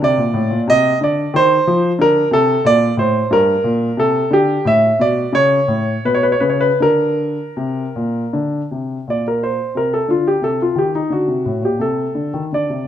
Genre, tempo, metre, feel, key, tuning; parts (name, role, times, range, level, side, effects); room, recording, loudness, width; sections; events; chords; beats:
classical, baroque-style suite movement for grand piano; 77-93 BPM; 3/4; rubato; A4 = 440 Hz
warm grand piano; solo; 0.0-12.9 s; G2 to E5; -14 LUFS; equal
moderate large studio reverb, RT60 1.3 s; minimal, uncompressed stereo recording; -14 LUFS; side -10 dB against mid
0.0-9.1 A section; 9.1-12.9 A section
0.0 Gm (rootless); 0.7 F5/C; 2.0 Bbmaj7/D; 2.6 Gmadd9; 4.0 Csus2; 4.6 A; 6.8 Bbadd9; 8.3 Csus2; 9.1 Bbadd9; 10.4 Cm; 11.1 D5
0.02 | 0.68 1.34 1.99 | 2.64 3.30 3.97 | 4.65 5.33 6.05 | 6.81 7.58 8.33 | 9.07 9.75 10.42 | 11.10 11.78 12.51